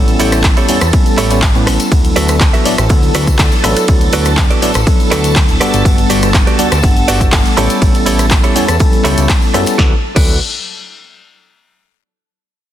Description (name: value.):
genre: filtered disco house.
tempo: 122 BPM.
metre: 4/4.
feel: straight.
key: D major.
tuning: A4 = 440 Hz.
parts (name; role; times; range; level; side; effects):
bell-like tine electric piano; accompaniment; 0.0-10.3 s; F#3 to F#5; -16 LUFS; equal; phaser, sidechain pumping.
string machine, full ensemble; sustained chords; 0.0-9.8 s; A4 to A5; -22 LUFS; left 1 dB; phaser, ensemble chorus, vintage 12-bit sampler grit, sidechain pumping.
direct-recorded clean electric guitar; riff; 0.0-10.4 s; E4 to E5; -19 LUFS; right 6 dB; sidechain pumping.
fat analog bass; bass; 0.0-10.4 s; D1 to A2; -16 LUFS; equal; sidechain pumping.
punchy analog drum machine; drums; 0.1-10.3 s; crash cymbal, handclaps, hi-hat, ride cymbal, rim click, shaker, snare drum; -17 LUFS; equal; sidechain pumping on cymbals, sidechain pumping on perc, sidechain pumping on hats.
tambourine; percussion; 0.1-9.8 s; none; -28 LUFS; left 7 dB; sidechain pumping on perc.
electronic kick drum; drums; 0.4-10.3 s; none; -12 LUFS; equal; overdrive.
room: little or no reverb.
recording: dense, heavily limited modern master.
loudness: -9 LUFS.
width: side -11 dB against mid.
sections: 0.0-9.8 A section; 9.8-11.8 B section.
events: drop 0.0-9.8.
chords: 0.0 A7; 1.9 D6; 5.6 Gmaj7; 7.6 A7; 9.8 D6.